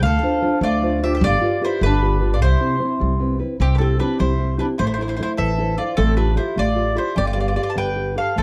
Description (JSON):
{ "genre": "italian folk, Italian serenade", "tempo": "101 BPM (dotted quarters)", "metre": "6/8", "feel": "straight", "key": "C major", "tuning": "A4 = 440 Hz", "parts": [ { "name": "mandolin", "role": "melody", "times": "0.0-8.4 s", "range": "G4 to A5", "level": "-26 LUFS", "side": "equal", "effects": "none" }, { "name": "mandolin", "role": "second line", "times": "0.0-8.4 s", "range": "C4 to C5", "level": "-30 LUFS", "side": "equal", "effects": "none" }, { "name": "nylon-string guitar", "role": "accompaniment", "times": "0.0-8.4 s", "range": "C3 to C5", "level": "-25 LUFS", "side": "equal", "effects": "none" }, { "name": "upright bass", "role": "bass", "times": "0.0-8.4 s", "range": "G1 to D2", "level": "-23 LUFS", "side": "equal", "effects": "none" } ], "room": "moderate studio reverb, RT60 0.5 s", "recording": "dark, warm production", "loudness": "-20 LUFS", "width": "mono", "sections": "0.0-3.6 A section; 3.6-8.4 B section", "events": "none", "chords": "0.0 Dm7; 1.2 G7; 2.4 Cmaj7; 3.6 C; 4.8 Am; 6.0 Fadd9/A; 7.2 Gadd9" }